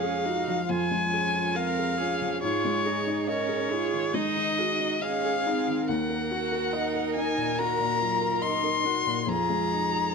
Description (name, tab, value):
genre	neoclassical piano and strings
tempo	70 BPM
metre	4/4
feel	rubato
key	Eb dorian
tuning	A4 = 441 Hz
part	dark violin	melody	0.0-10.1 s	Db5 to C6	-28 LUFS	left 5 dB	slapback echo
part	warm cello	second line	0.0-10.1 s	Bb3 to Gb4	-32 LUFS	right 12 dB	none
part	felt-muted upright piano	accompaniment	0.0-10.1 s	Eb2 to F5	-30 LUFS	left 4 dB	none
part	warm viola	accompaniment	0.0-10.1 s	Eb4 to Bb4	-34 LUFS	right 8 dB	none
room	light reverb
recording	close, detailed microphones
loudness	-24 LUFS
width	side -5 dB against mid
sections	0.0-10.1 A section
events	none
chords	0.0 Db/F; 2.4 Absus4; 5.9 Ebm; 9.3 Fm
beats	0.69 1.55 | 2.42 3.29 4.15 5.02 | 5.88 6.73 7.57 8.42 | 9.28 10.15